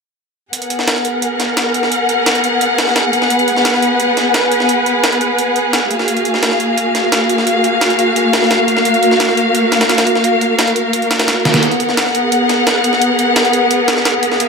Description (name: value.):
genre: liquid drum and bass.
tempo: 173 BPM.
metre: 4/4.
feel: straight.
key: G# dorian.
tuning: A4 = 438 Hz.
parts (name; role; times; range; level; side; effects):
rich studio string section; sustained chords; 0.5-14.5 s; A#3 to F#5; -12 LUFS; left 1 dB; vintage 12-bit sampler grit.
breakbeat sampler-style drum kit; drums; 0.5-14.5 s; hi-hat, snare drum; -17 LUFS; right 1 dB; high-pass filter on hats, high-pass filter on snare.
pop drum kit; drums; 0.5-14.5 s; hi-hat, snare drum; -20 LUFS; right 1 dB; overdrive, low-pass filter on hats, low-pass filter on snare, low-pass filter on room.
room: wet plate reverb, RT60 1.6 s.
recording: dreamy mix soaked in reverb.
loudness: -11 LUFS.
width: side -4 dB against mid.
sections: 0.5-14.5 A section.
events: drum fill 11.5.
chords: 0.5 G#m9; 5.9 F#maj9; 11.6 G#m9.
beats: | 0.53 0.88 1.22 1.57 | 1.92 2.27 2.61 2.96 | 3.31 3.65 4.00 4.34 | 4.69 5.04 5.39 5.73 | 6.08 6.43 6.77 7.12 | 7.47 7.81 8.16 8.51 | 8.85 9.20 9.55 9.89 | 10.24 10.59 10.94 11.28 | 11.63 11.98 12.32 12.67 | 13.02 13.36 13.71 14.06 | 14.40.